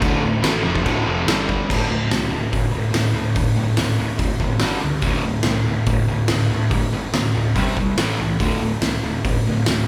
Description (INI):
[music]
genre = garage rock duo or trio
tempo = 143 BPM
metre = 4/4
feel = straight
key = unclear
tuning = A4 = 439 Hz
[part]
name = fuzz guitar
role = riff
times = 0.0-9.9 s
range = D2 to C4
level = -23 LUFS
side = equal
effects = distortion
[part]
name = fuzz picked electric bass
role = bass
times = 0.0-9.8 s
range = D1 to D2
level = -29 LUFS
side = equal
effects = overdrive
[part]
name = oversized low-tuned drum kit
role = drums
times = 0.0-9.8 s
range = crash cymbal, hi-hat, kick drum, snare drum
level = -24 LUFS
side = equal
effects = none
[sound]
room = light reverb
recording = band playing live in one room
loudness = -20 LUFS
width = mono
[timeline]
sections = 0.0-1.7 A section; 1.7-9.9 B section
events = none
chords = 0.0 D5; 1.3 G5; 1.7 D5; 4.6 G5; 5.0 D5; 7.6 C5; 8.0 A5; 8.4 D5